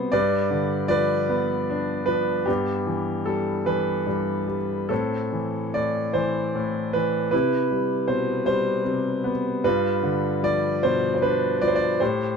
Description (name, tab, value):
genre	classical, lyrical solo piano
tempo	50 BPM (dotted quarters)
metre	6/8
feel	uneven beats, rubato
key	unclear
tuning	A4 = 441 Hz
part	clear concert grand piano	solo	0.0-12.4 s	G2 to D5	-21 LUFS	equal	none
room	light reverb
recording	none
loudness	-21 LUFS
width	side -6 dB against mid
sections	0.0-12.4 A section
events	none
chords	0.1 G7; 2.5 Em/G; 4.9 Am; 7.3 Cmaj7; 9.6 G7